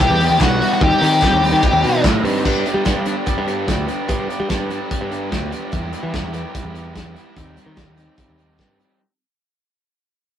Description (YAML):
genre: indie rock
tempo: 146 BPM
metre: 4/4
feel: straight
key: G major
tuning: A4 = 440 Hz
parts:
  - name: octave-fuzz lead guitar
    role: melody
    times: 0.0-2.0 s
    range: F#4 to G4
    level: -16 LUFS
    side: left 2 dB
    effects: distortion
  - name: raw garage guitar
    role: riff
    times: 0.0-9.0 s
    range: G3 to G4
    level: -22 LUFS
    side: right 1 dB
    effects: overdrive
  - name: modern bright picked electric bass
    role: bass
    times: 0.0-8.8 s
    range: B1 to G3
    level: -21 LUFS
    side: equal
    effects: none
  - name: loose indie drum kit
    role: drums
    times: 0.0-8.9 s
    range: crash cymbal, hi-hat, kick drum, snare drum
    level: -21 LUFS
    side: equal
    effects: none
  - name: group handclap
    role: percussion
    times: 0.0-2.1 s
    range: none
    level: -29 LUFS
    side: left 4 dB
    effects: none
room: light reverb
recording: rough rehearsal-room recording, warm saturation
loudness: -16 LUFS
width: side -10 dB against mid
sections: 0.0-2.4 A section; 2.4-9.0 B section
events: fade-out 2.4-9.0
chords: 0.0 Em; 0.8 Cm/Eb; 2.4 G; 5.7 Em; 7.4 Cm/Eb